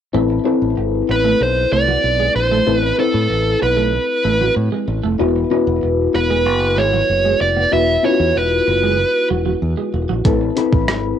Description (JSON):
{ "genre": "1980s-style pop", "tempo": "95 BPM", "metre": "4/4", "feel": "straight", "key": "unclear", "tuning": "A4 = 436 Hz", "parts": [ { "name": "mellow FM electric piano", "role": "accompaniment", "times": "0.1-11.2 s", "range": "B3 to B5", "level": "-19 LUFS", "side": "left 6 dB", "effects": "chorus, cassette tape" }, { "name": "twelve-string electric guitar", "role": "riff", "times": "0.1-10.9 s", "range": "F#3 to C#4", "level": "-24 LUFS", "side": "right 8 dB", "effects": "lush chorus, cassette tape" }, { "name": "modern bright fingered electric bass", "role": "bass", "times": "0.1-11.1 s", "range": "E1 to A2", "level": "-21 LUFS", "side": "right 1 dB", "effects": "none" }, { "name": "dark smooth lead guitar", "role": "melody", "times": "1.1-9.3 s", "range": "A4 to E5", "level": "-16 LUFS", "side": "right 2 dB", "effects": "overdrive, cassette tape" }, { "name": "gated 80s digital drum machine", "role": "drums", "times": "10.2-11.0 s", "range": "hi-hat, kick drum, rim click", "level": "-17 LUFS", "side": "right 1 dB", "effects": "overdrive, cassette tape" } ], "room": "wet booth ambience, RT60 0.2 s", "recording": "home recording on cassette", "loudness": "-14 LUFS", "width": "side -9 dB against mid", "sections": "0.1-11.2 A section", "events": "none", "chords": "0.1 Amadd9; 5.2 Esus2; 10.2 Amadd9" }